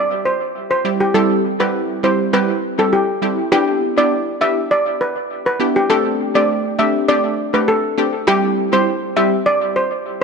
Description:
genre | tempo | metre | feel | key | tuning
dancehall | 101 BPM | 4/4 | straight | E minor | A4 = 440 Hz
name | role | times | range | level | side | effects
steel pan | melody | 0.0-10.2 s | G4 to E5 | -17 LUFS | equal | analog delay
analog pluck | accompaniment | 0.8-9.3 s | G3 to G4 | -18 LUFS | equal | chorus, analog delay
room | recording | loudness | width
moderate echo chamber reverb, RT60 2.1 s | echo-heavy mix | -15 LUFS | side -5 dB against mid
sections
0.0-3.5 A section; 3.5-10.2 B section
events
none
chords
0.0 C; 3.5 Em7; 5.9 D7sus4; 8.3 C

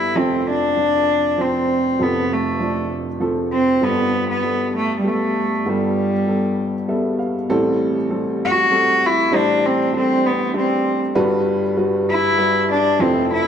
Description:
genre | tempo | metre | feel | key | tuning
acoustic folk-pop ballad | 98 BPM | 3/4 | straight | G mixolydian, G major from 7.5 s | A4 = 442 Hz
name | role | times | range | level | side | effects
warm cello | melody | 0.0-13.5 s | G3 to F#4 | -18 LUFS | equal | none
dark upright piano | accompaniment | 0.0-13.5 s | F1 to F5 | -20 LUFS | equal | none
room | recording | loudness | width
moderate concert hall reverb, RT60 2.4 s | none | -16 LUFS | side -8 dB against mid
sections
0.0-7.5 A section; 7.5-13.5 B section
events
none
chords
0.1 F; 3.8 Gadd9; 7.5 Am7; 9.3 D7sus4/A; 11.2 Gmaj7

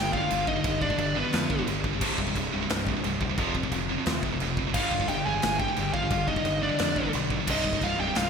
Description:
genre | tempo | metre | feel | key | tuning
heavy metal | 176 BPM | 4/4 | straight | unclear | A4 = 441 Hz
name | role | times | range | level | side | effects
smooth overdriven lead guitar | melody | 0.0-1.6, 4.7-8.3 s | B4 to Ab5 | -30 LUFS | left 1 dB | digital delay
high-gain lead guitar | second line | 0.0-1.6, 4.8-8.3 s | B3 to Ab4 | -35 LUFS | right 2 dB | distortion
heavy high-gain guitar | riff | 0.0-8.3 s | C2 to G3 | -32 LUFS | right 10 dB | distortion
high-gain distorted guitar | riff | 0.0-8.3 s | C2 to G3 | -33 LUFS | left 9 dB | distortion
sludgy distorted guitar | riff | 0.0-8.3 s | C2 to G3 | -35 LUFS | right 1 dB | overdrive
growling picked electric bass | bass | 0.0-8.3 s | C1 to F2 | -35 LUFS | equal | overdrive
big rock drum kit | drums | 0.1-8.2 s | china cymbal, crash cymbal, kick drum, snare drum | -30 LUFS | equal | gated reverb
room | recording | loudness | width
moderate lush hall reverb, RT60 2.0 s, small room reverb | bright 1980s-style digital production | -24 LUFS | side -6 dB against mid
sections
0.0-8.3 A section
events
none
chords
0.0 G; 2.0 C5; 3.4 F5; 4.8 G5; 7.5 Cm

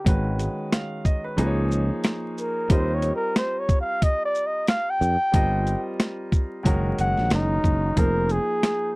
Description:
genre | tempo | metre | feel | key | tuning
hip hop, jazz-hop | 91 BPM | 4/4 | swing 57% on 16ths | unclear | A4 = 439 Hz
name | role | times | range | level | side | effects
breathy flugelhorn | melody | 0.0-9.0 s | Eb4 to G5 | -24 LUFS | equal | none
clear concert grand piano | accompaniment | 0.0-9.0 s | Eb3 to F5 | -29 LUFS | equal | none
sustaining fretless electric bass | bass | 0.1-8.4 s | F1 to F2 | -24 LUFS | equal | none
boom bap sampler-style drum kit | drums | 0.1-8.8 s | hi-hat, kick drum, shaker, snare drum | -21 LUFS | equal | none
room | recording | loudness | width
little or no reverb | dry, close 1970s-style studio recording, vinyl crackle | -21 LUFS | side -26 dB against mid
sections
0.0-8.0 A section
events
flugelhorn solo 0.0-8.0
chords
0.1 Abm7; 1.4 Dbadd9; 2.7 Eb69; 5.3 Eb69/G; 6.7 Gbadd9; 8.0 Fm11

